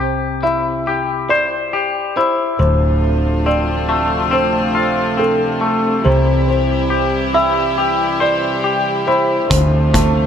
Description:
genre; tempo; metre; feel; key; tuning
post-rock; 69 BPM; 4/4; straight; unclear; A4 = 445 Hz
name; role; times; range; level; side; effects
felt-muted upright piano; arpeggios; 0.0-10.3 s; A4 to E5; -20 LUFS; right 2 dB; digital delay, slapback echo
twangy electric guitar; arpeggios; 0.0-10.3 s; D2 to C5; -18 LUFS; left 3 dB; digital delay, slapback echo
hollow-body short-scale fingered electric bass; bass; 0.0-10.3 s; D1 to D2; -19 LUFS; right 1 dB; none
rich studio string section; sustained chords; 2.6-10.3 s; C3 to G4; -20 LUFS; equal; none
loose indie drum kit; drums; 9.5-10.2 s; hi-hat, kick drum; -18 LUFS; equal; none
room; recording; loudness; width
wet lush hall reverb, RT60 2.6 s; big arena sound; -14 LUFS; side -8 dB against mid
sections
0.0-9.5 A section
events
none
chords
0.0 C; 2.6 Dm7; 6.1 C; 9.5 Dm7

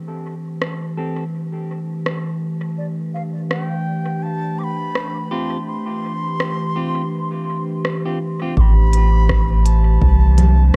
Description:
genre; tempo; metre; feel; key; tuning
ambient dub; 83 BPM; 4/4; swing 58% on 16ths; A minor; A4 = 436 Hz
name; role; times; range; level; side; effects
warbly tape-like pad; sustained chords; 0.0-10.8 s; E3 to C5; -26 LUFS; equal; chorus, built-in reverb
organic electronic drum kit; drums; 0.6-10.5 s; congas, hi-hat, rim click; -27 LUFS; equal; dub echo
clean electric guitar; stabs; 1.0-8.5 s; C4 to A4; -34 LUFS; equal; low-pass filter, dub echo
wooden flute; melody; 2.8-10.8 s; D5 to D6; -30 LUFS; equal; dub echo
soft dub sub bass; bass; 8.6-10.8 s; A1 to C2; -15 LUFS; equal; tube saturation
electronic kick drum; drums; 8.6-10.8 s; none; -20 LUFS; equal; none
room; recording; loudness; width
little or no reverb; dark, warm production; -19 LUFS; mono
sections
0.0-8.6 A section; 8.6-10.8 B section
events
filter sweep on clean electric guitar 0.0-8.6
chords
0.0 Am7; 2.8 G7sus4; 8.6 Am7

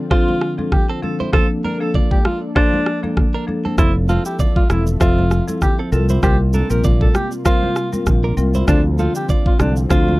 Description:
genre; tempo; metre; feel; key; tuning
afrobeats; 98 BPM; 4/4; swing 55% on 16ths; F major; A4 = 440 Hz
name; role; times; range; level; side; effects
marimba with medium mallets; accompaniment; 0.0-10.2 s; F3 to E5; -23 LUFS; left 2 dB; none
warm analog pad; sustained chords; 0.0-10.2 s; C3 to E5; -28 LUFS; equal; chorus
breathy alto saxophone; melody; 0.1-10.2 s; D4 to Bb4; -21 LUFS; equal; digital delay
direct-recorded clean electric guitar; riff; 0.1-10.1 s; C4 to E5; -28 LUFS; right 5 dB; none
afro-pop drum kit; drums; 0.1-10.1 s; kick drum, rim click, shaker; -16 LUFS; equal; none
congas; percussion; 0.3-10.2 s; none; -27 LUFS; right 1 dB; none
modern bright fingered electric bass; bass; 3.8-10.2 s; E1 to D2; -17 LUFS; equal; none
room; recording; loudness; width
little or no reverb; dark, warm production; -14 LUFS; side -20 dB against mid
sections
0.0-10.2 A section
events
break 0.0-3.8; hi-hats muted 1.3-3.8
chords
0.0 Dm7; 1.3 Bbmaj7; 3.8 Fmaj7; 5.9 C7sus4; 8.7 Dm7

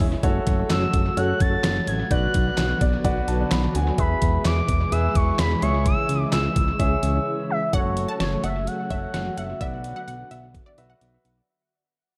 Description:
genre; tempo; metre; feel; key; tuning
synth-pop; 128 BPM; 4/4; straight; F# minor; A4 = 440 Hz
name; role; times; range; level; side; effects
warm concert grand piano; accompaniment; 0.0-11.3 s; F#4 to B5; -32 LUFS; equal; dub echo
string machine, violas; sustained chords; 0.0-11.5 s; B2 to F#4; -32 LUFS; equal; ensemble chorus
smooth gliding synth bass; bass; 0.0-11.4 s; E1 to E2; -27 LUFS; equal; none
detuned 8-bit digital drum machine; drums; 0.0-11.4 s; handclaps, hi-hat, kick drum, snare drum; -27 LUFS; equal; none
expressive portamento lead; melody; 0.7-11.0 s; C#5 to A6; -30 LUFS; equal; chorus, dub echo
unison pluck; second line; 7.7-11.0 s; D5 to A5; -39 LUFS; equal; dub echo
room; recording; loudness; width
light reverb; echo-heavy mix; -23 LUFS; mono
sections
0.0-7.7 A section; 7.7-11.5 B section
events
grand piano fill 2.6-4.0; break 7.3-7.7; fade-out 7.7-11.5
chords
0.2 F#m; 2.1 Bm; 4.0 E; 5.6 C#m; 7.7 F#m; 9.6 Bm

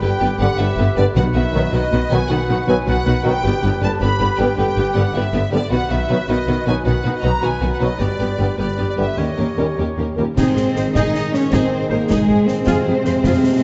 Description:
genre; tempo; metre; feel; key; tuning
cinematic, heroic adventure film score; 105 BPM (dotted quarters); 12/8; straight; Ab major from 10.4 s; A4 = 439 Hz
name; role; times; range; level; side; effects
rich symphonic violin section; melody; 0.0-13.4 s; Ab4 to B5; -30 LUFS; equal; none
large flute ensemble; second line; 0.0-9.8 s; D5 to B5; -30 LUFS; equal; none
mellow clarinet; second line; 0.0-10.2 s; F#4 to G4; -30 LUFS; equal; none
warm oboe; second line; 0.0-10.2 s; B4 to C#5; -31 LUFS; equal; none
warm symphonic violin section; second line; 0.0-13.6 s; F#4 to Eb5; -30 LUFS; equal; none
rich symphonic viola section; accompaniment; 0.0-13.4 s; D3 to C5; -28 LUFS; equal; none
rich symphonic double bass section; bass; 0.0-13.3 s; G1 to F2; -25 LUFS; equal; none
warm symphonic cello section; bass; 0.0-13.6 s; D#2 to Eb4; -24 LUFS; equal; none
bright trombone section; sustained chords; 0.4-13.6 s; A#2 to Ab3; -28 LUFS; equal; none
mellow French horn section; sustained chords; 0.4-10.2 s; B3 to B4; -29 LUFS; equal; none
timpani; percussion; 1.2-1.7 s; B2; -25 LUFS; equal; none
concert snare drum, clash cymbals and concert bass drum; drums; 10.4-13.6 s; none; -25 LUFS; equal; none
room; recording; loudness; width
moderate scoring stage reverb, RT60 2.0 s; nothing above 7.9 kHz; -18 LUFS; mono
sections
0.0-10.4 A section; 10.4-13.6 B section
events
none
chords
0.0 G; 1.2 B; 3.4 G; 5.7 B; 8.0 G; 9.2 D#7; 10.4 Ab; 12.7 Fm

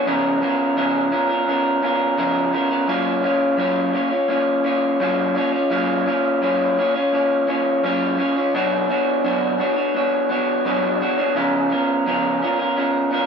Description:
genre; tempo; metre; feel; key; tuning
indie pop; 85 BPM; 4/4; straight; F# major; A4 = 440 Hz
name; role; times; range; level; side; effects
electric guitar through a small old amp; solo; 0.0-13.3 s; B2 to C#5; -17 LUFS; equal; warbly pitch drift
room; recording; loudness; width
moderate studio reverb, RT60 0.6 s; band playing live in one room; -17 LUFS; side -6 dB against mid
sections
0.0-13.3 A section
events
none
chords
0.1 C#6; 2.9 F#maj7; 8.5 Bmadd9; 11.4 C#6

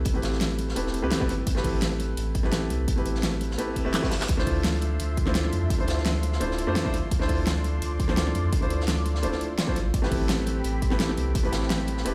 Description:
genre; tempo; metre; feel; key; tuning
liquid drum and bass; 170 BPM; 4/4; straight; D dorian; A4 = 439 Hz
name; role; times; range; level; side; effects
clear concert grand piano; accompaniment; 0.0-12.1 s; A3 to C5; -32 LUFS; equal; delay
saturated sub bass; bass; 0.0-12.1 s; D1 to F2; -30 LUFS; equal; none
crunchy breakbeat drum kit; drums; 0.0-12.1 s; hi-hat, snare drum; -39 LUFS; equal; high-pass filter on hats, studio reverb, high-pass filter on snare, high-pass filter on room
electronic kick drum; drums; 0.1-11.4 s; none; -30 LUFS; equal; studio reverb
pop drum kit; drums; 0.1-12.1 s; handclaps, hi-hat, snare drum; -32 LUFS; equal; studio reverb
reverse cymbal; sound effects; 3.7-4.3 s; none; -43 LUFS; equal; none
lush unison pad; sustained chords; 4.7-12.1 s; F3 to C6; -38 LUFS; equal; chorus, phaser, sidechain pumping
room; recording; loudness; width
light reverb; played on a big sound system in a bare room, large studio reverb; -26 LUFS; mono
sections
0.0-12.1 A section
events
reverse cymbal 3.7-4.3; drum fill 3.9-4.3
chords
0.0 Am9; 4.3 Dm9; 9.9 Am9

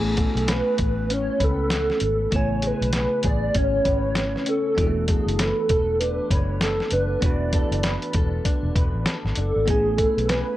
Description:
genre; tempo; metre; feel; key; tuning
indie pop, bedroom pop; 98 BPM; 4/4; swing 60% on 16ths; A major; A4 = 441 Hz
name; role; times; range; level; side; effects
hollow clarinet-like synth lead; melody; 0.0-10.6 s; G#4 to D5; -24 LUFS; right 1 dB; phaser, ensemble chorus, analog delay
bell-like tine electric piano; accompaniment; 0.0-10.6 s; C#3 to G#5; -33 LUFS; right 4 dB; fast stereo tremolo, cassette tape
electric guitar through a small old amp; accompaniment; 0.0-10.6 s; E3 to B4; -29 LUFS; left 2 dB; ensemble chorus, warbly pitch drift
vintage muted fingered electric bass; bass; 0.0-10.4 s; E1 to C#2; -26 LUFS; equal; none
lo-fi sampler-style drum kit; drums; 0.2-10.5 s; hi-hat, kick drum, snare drum; -24 LUFS; equal; none
phased analog pad; sustained chords; 9.7-10.6 s; A3 to B5; -36 LUFS; right 3 dB; phaser, chorus
room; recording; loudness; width
light reverb; none; -20 LUFS; side -14 dB against mid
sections
0.0-10.6 A section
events
none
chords
0.0 Amaj9; 4.8 E7sus4; 9.7 Amaj9

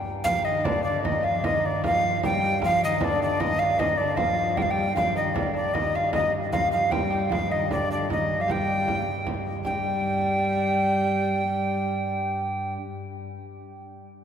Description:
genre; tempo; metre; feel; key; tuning
medieval dance; 154 BPM; 3/4; straight; unclear; A4 = 437 Hz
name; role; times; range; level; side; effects
chamber organ, principal chorus; drone; 0.0-12.8 s; G2; -34 LUFS; right 2 dB; none
frame drum; percussion; 0.1-9.8 s; none; -31 LUFS; right 1 dB; none
alto recorder; melody; 0.2-12.7 s; D5 to G5; -25 LUFS; equal; none
dark viola da gamba; second line; 0.2-12.8 s; D3 to Ab3; -30 LUFS; left 1 dB; none
lute; second line; 0.3-13.4 s; D4 to G4; -32 LUFS; equal; none
room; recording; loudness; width
wet cathedral reverb, RT60 5.8 s; recorded in a church or concert hall; -22 LUFS; side -8 dB against mid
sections
0.3-9.6 A section; 9.6-12.0 B section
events
none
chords
none

